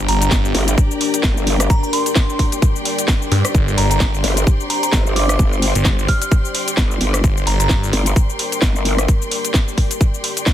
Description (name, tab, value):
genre	bass house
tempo	130 BPM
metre	4/4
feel	swing 57% on 16ths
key	G minor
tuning	A4 = 440 Hz
part	deep dark ambient pad	sustained chords	0.0-10.5 s	G3 to C5	-25 LUFS	left 3 dB	chorus, built-in reverb, sidechain pumping
part	phased detuned saw bass	bass	0.0-0.5, 3.3-7.9 s	G1 to G2	-18 LUFS	equal	phaser, tube saturation, sidechain pumping
part	clear symphonic string section	texture	0.0-10.5 s	G4 to C6	-26 LUFS	left 1 dB	sidechain pumping
part	glassy synth bell	melody	0.1-7.7 s	Bb5 to F6	-25 LUFS	right 2 dB	chorus, vintage 12-bit sampler grit, dub echo
part	garage drum kit	drums	0.1-10.5 s	cabasa, hi-hat, rim click, snare drum	-21 LUFS	left 1 dB	none
part	electronic kick drum	drums	0.3-10.5 s	none	-16 LUFS	equal	none
part	growl bass	bass	0.5-9.1 s	G1	-18 LUFS	equal	chorus, overdrive, sidechain pumping
room	digital ambience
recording	dense, heavily limited modern master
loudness	-14 LUFS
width	side -11 dB against mid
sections	0.0-10.5 A section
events	none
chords	0.0 Gm